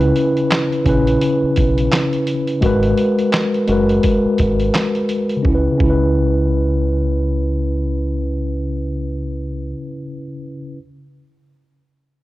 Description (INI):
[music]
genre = lo-fi hip hop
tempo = 85 BPM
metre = 4/4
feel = swing 60% on 16ths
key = C# dorian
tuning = A4 = 440 Hz
[part]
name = mellow tine electric piano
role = accompaniment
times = 0.0-10.8 s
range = C#3 to B4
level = -17 LUFS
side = left 1 dB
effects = medium stereo tremolo, cassette tape, low-pass filter
[part]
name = deep dub fingered electric bass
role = bass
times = 0.0-9.7 s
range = F#1 to C#2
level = -20 LUFS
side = right 1 dB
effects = transformer saturation
[part]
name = lo-fi sampler-style drum kit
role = drums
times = 0.0-6.0 s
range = handclaps, hi-hat, kick drum, snare drum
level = -20 LUFS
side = right 1 dB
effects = none
[sound]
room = light reverb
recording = dry, gritty hardware recording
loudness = -15 LUFS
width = side -16 dB against mid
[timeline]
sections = 0.0-5.4 A section; 5.4-8.3 B section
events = none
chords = 0.0 C#m7; 2.6 G#m9; 5.4 C#m7